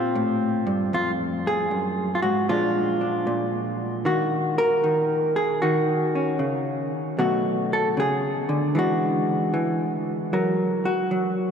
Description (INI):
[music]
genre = solo jazz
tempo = 77 BPM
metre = 4/4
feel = swing 67% on 8ths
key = unclear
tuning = A4 = 441 Hz
[part]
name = vintage hollow-body jazz guitar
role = solo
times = 0.0-11.5 s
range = F2 to Bb4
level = -21 LUFS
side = equal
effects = none
[sound]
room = wet cathedral reverb, RT60 6.9 s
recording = in a vast, echoing space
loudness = -21 LUFS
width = side -7 dB against mid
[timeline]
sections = 0.0-11.5 A section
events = none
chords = 0.0 Bbsus2; 0.9 Fm; 2.5 Bb7; 4.1 Ebm7; 7.2 Bm7; 8.7 E9; 10.3 Gbadd9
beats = 0.14 | 0.93 1.71 2.49 3.27 | 4.05 4.83 5.62 6.40 | 7.18 7.96 8.74 9.53 | 10.31 11.09